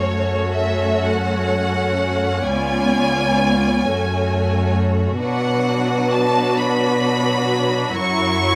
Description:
classical, slow romantic movement for string orchestra; 41-45 BPM (dotted quarters); 6/8; rubato; F# minor; A4 = 439 Hz
clear studio violin section; melody; 0.0-8.6 s; C#5 to C#6; -25 LUFS; equal
rich studio violin section; second line; 0.0-8.6 s; E#4 to D5; -27 LUFS; equal
warm studio viola section; accompaniment; 0.0-8.6 s; F#3 to E4; -24 LUFS; equal
rich studio cello section; bass; 0.0-8.6 s; C#2 to B2; -23 LUFS; equal
moderate studio reverb, RT60 0.8 s; -19 LUFS; mono
0.0-8.6 A section
0.0 F#m; 2.4 C#7b9; 3.8 F#m; 5.2 Bm; 8.0 F#7

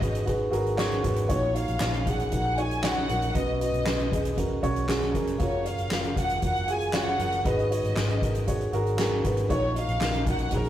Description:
piano-driven pop; 117 BPM; 4/4; straight; A4 = 440 Hz
warm symphonic violin section; melody; 0.0-10.7 s; A#4 to G#5; -30 LUFS; left 1 dB
dark upright piano; accompaniment; 0.0-10.7 s; G#2 to D#5; -28 LUFS; right 1 dB
vintage muted fingered electric bass; bass; 0.0-10.7 s; E#1 to B1; -30 LUFS; equal
soft-mallet drum kit; drums; 0.0-10.7 s; handclaps, hi-hat, kick drum, snare drum; -30 LUFS; equal
wet small room reverb, RT60 0.5 s; rough rehearsal-room recording, warm saturation; -24 LUFS; side -12 dB against mid
0.0-10.7 A section
0.0 G#m7; 1.3 D#m7/A#; 3.3 Bsus2; 5.4 F#maj7; 7.4 G#m7; 9.5 D#m7/A#

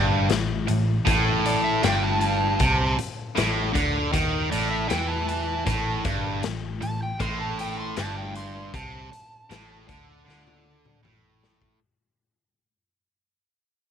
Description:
blues rock power trio and southern rock; 78 BPM; 4/4; straight; A minor; A4 = 440 Hz
distorted electric guitar; riff; 0.0-11.8 s; G2 to E3; -25 LUFS; right 1 dB; overdrive
vintage muted picked electric bass; bass; 0.0-11.8 s; G1 to E2; -28 LUFS; equal
raw garage drum kit; drums; 0.3-11.8 s; hi-hat, kick drum, snare drum, toms; -29 LUFS; left 3 dB
overdriven slide guitar; melody; 1.5-11.0 s; D5 to C6; -31 LUFS; right 1 dB
small room reverb; 1960s-style stereo; -22 LUFS; side -8 dB against mid
0.0-11.8 A section
fade-out 2.0-11.8; drum fill 10.3-11.8
0.0 Am

